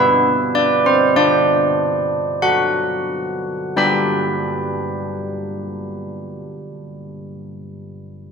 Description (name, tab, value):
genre	classical, tune for church bells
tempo	44-52 BPM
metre	4/4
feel	straight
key	G major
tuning	A4 = 442 Hz
part	carillon bells	solo	0.0-7.1 s	G3 to B5	-17 LUFS	right 1 dB	none
room	moderate recital hall reverb, RT60 1.3 s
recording	minimal, uncompressed stereo recording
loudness	-16 LUFS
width	side -6 dB against mid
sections	0.0-3.8 A section; 3.8-8.3 B section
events	slowing down 0.0-3.8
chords	0.0 Bm; 1.2 D7; 3.8 G